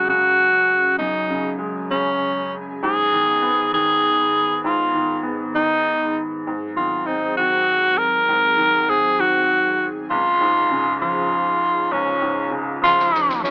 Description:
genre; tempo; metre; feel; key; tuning
six-eight pop ballad; 66 BPM (dotted quarters); 6/8; straight; unclear; A4 = 441 Hz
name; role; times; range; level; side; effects
raspy tenor saxophone; melody; 0.0-13.5 s; C#4 to A#4; -20 LUFS; equal; none
bright upright piano; accompaniment; 0.0-13.5 s; C#2 to B#3; -28 LUFS; equal; none
airy breathy pad; sustained chords; 0.0-13.5 s; C#2 to G#4; -36 LUFS; equal; chorus
snare drum; drums; 12.8-13.5 s; none; -32 LUFS; equal; none
room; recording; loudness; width
light reverb; rough home demo mix, AM radio sound; -19 LUFS; mono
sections
0.0-13.5 A section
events
drum fill 12.8-13.5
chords
0.0 F#sus2; 2.8 G#m; 6.5 G#7; 10.1 C#

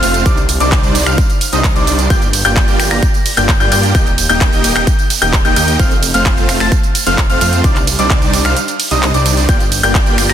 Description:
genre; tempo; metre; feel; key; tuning
EDM, festival progressive house; 130 BPM; 4/4; straight; unclear; A4 = 440 Hz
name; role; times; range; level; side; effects
warm concert grand piano; arpeggios; 0.0-10.3 s; D6 to Bb6; -18 LUFS; left 3 dB; sidechain pumping, dub echo
supersaw chords; riff; 0.0-10.3 s; G3 to Bb5; -17 LUFS; right 1 dB; sidechain pumping, dub echo
detuned saw bass; bass; 0.0-10.3 s; Eb1 to G2; -17 LUFS; equal; sidechain pumping
big-room dance drum kit; drums; 0.0-10.3 s; finger snaps, handclaps, hi-hat, ride cymbal, tambourine; -17 LUFS; right 2 dB; none
electronic kick drum; drums; 0.3-10.0 s; none; -14 LUFS; equal; none
room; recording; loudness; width
light reverb; dense, heavily limited modern master; -10 LUFS; side -10 dB against mid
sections
0.0-10.3 A section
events
kick drops out 8.6-9.5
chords
0.3 Cmadd9; 2.1 Gm7; 3.9 Eb; 5.8 F; 7.6 Cmadd9; 9.5 Gm7

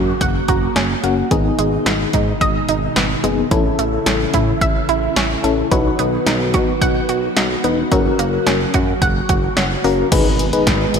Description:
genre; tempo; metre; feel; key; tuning
synth-pop; 109 BPM; 4/4; straight; G# minor; A4 = 441 Hz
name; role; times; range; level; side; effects
ensemble organ-string; sustained chords; 0.0-11.0 s; B2 to F#4; -22 LUFS; right 1 dB; phaser, ensemble chorus
analog pluck; arpeggios; 0.0-10.1 s; D#3 to F#5; -22 LUFS; right 4 dB; chorus, ping-pong delay
smooth synth bass; bass; 0.0-11.0 s; E1 to B2; -22 LUFS; equal; none
punchy analog drum machine; drums; 0.2-11.0 s; crash cymbal, hi-hat, kick drum, snare drum; -19 LUFS; equal; gated reverb
FM electric piano with tremolo; accompaniment; 0.5-11.0 s; A#3 to A#5; -20 LUFS; left 5 dB; none
impact; sound effects; 10.2-11.0 s; none; -27 LUFS; right 1 dB; none
room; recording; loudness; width
moderate lush hall reverb, RT60 2.2 s; bright 1980s-style digital production; -14 LUFS; side -6 dB against mid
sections
0.0-10.1 A section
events
FM electric piano fill 0.2-1.3, 9.3-10.1; impact 10.1-11.0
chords
0.0 F#; 1.3 G#m; 3.5 A; 5.7 B; 7.9 F#; 10.1 G#m

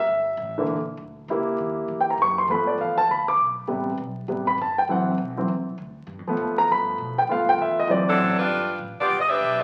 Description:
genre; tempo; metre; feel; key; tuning
jazz, big band swing; 200 BPM; 4/4; swing 61% on 8ths; G mixolydian; A4 = 440 Hz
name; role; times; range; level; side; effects
warm grand piano; accompaniment; 0.0-8.4 s; C3 to D6; -24 LUFS; equal; none
upright bass; bass; 0.0-9.6 s; G1 to B2; -41 LUFS; equal; none
edgy saxophone section; melody; 8.1-9.6 s; F#3 to E5; -23 LUFS; equal; none
room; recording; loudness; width
wet large studio reverb, RT60 1.2 s; very old 78 rpm record, vinyl crackle; -23 LUFS; mono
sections
0.0-8.5 A section; 8.5-9.6 B section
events
grand piano solo 0.0-8.5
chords
0.0 C7 (rootless); 1.3 C#dim7; 2.5 G7; 3.7 Am7; 4.9 D7; 6.1 G7; 7.9 D7; 8.5 G7

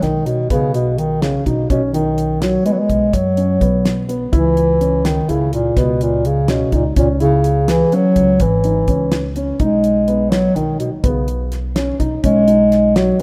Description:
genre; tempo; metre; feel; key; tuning
progressive instrumental, band music in an uneven meter; 250 BPM (eighths); 11/8; straight; B major; A4 = 441 Hz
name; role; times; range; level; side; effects
mellow bass clarinet; melody; 0.0-13.2 s; A#2 to G#3; -17 LUFS; equal; none
dark baby grand piano; arpeggios; 0.0-13.2 s; B3 to G#4; -25 LUFS; equal; slapback echo
upright bass; bass; 0.0-13.1 s; G#1 to F#2; -24 LUFS; equal; none
damped 70s drum kit; drums; 0.0-13.2 s; hi-hat, kick drum, snare drum; -23 LUFS; equal; none
room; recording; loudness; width
moderate plate reverb, RT60 2.3 s; rough home demo mix; -16 LUFS; mono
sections
0.0-13.2 A section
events
none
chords
0.0 B; 4.3 C#m; 9.6 B

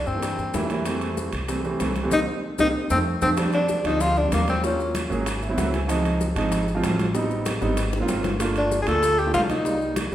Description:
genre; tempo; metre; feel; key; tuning
Afro-Cuban jazz; 191 BPM; 4/4; straight; F major; A4 = 440 Hz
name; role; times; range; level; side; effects
breathy tenor saxophone; melody; 0.0-4.9, 8.6-10.1 s; Bb3 to A4; -23 LUFS; left 1 dB; none
warm grand piano; accompaniment; 0.1-10.1 s; E3 to Ab5; -26 LUFS; right 2 dB; none
upright bass; bass; 0.1-10.1 s; G1 to G2; -29 LUFS; equal; none
bongos; percussion; 0.1-10.1 s; none; -34 LUFS; left 4 dB; none
congas; percussion; 0.1-10.1 s; none; -33 LUFS; left 1 dB; none
maracas; percussion; 0.1-10.1 s; none; -39 LUFS; left 6 dB; none
timbales; percussion; 0.2-10.1 s; none; -31 LUFS; right 2 dB; none
room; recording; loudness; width
wet recital hall reverb, RT60 1.4 s; recorded in a church or concert hall; -21 LUFS; side -12 dB against mid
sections
0.0-3.4 A section; 3.4-10.1 B section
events
drum fill 2.1-3.4, 7.6-8.4; band accent 2.1-3.4; grand piano fill 5.3-5.9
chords
0.0 C7; 0.9 Fmaj9; 2.1 C7(no3); 2.8 F; 3.4 Ebmaj13; 4.6 Ebm9; 5.3 Ab7alt; 5.9 Dbmaj9; 7.1 Am7b5; 7.8 Ab13; 8.4 Gm7

